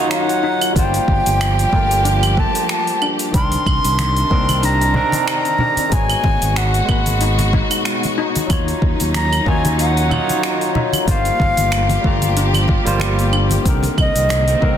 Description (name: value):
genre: sunset chillout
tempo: 93 BPM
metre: 4/4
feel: swing 55% on 16ths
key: C minor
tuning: A4 = 440 Hz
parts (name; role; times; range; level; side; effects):
- bright baroque flute; melody; 0.0-14.8 s; Eb5 to C6; -20 LUFS; equal; digital delay
- barky tine electric piano; accompaniment; 0.0-14.8 s; D3 to Cb6; -23 LUFS; moving between left 4 dB and right 3 dB; auto-pan, digital delay
- clear symphonic string section; sustained chords; 0.0-14.8 s; Cb3 to G4; -24 LUFS; equal; none
- steel pan; arpeggios; 0.0-14.8 s; A3 to G4; -27 LUFS; left 3 dB; digital delay
- deep house drum kit; drums; 0.1-14.6 s; claves, finger snaps, hi-hat, shaker; -24 LUFS; right 1 dB; overdrive, soft clipping on snare
- fretless electric bass; bass; 0.8-14.8 s; G1 to Eb2; -19 LUFS; equal; tube saturation
- electronic kick drum; drums; 0.8-14.8 s; none; -19 LUFS; equal; overdrive
- congas; percussion; 3.5-14.4 s; none; -25 LUFS; equal; none
room: moderate lush hall reverb, RT60 2.6 s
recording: dense, heavily limited modern master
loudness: -14 LUFS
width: side -9 dB against mid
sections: 0.0-14.8 A section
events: break 2.7-3.3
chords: 0.0 Ebm9; 0.8 Gm9; 3.3 Cm9; 5.9 Abm7; 8.5 Ebm9; 11.1 Gm7; 13.7 Cm9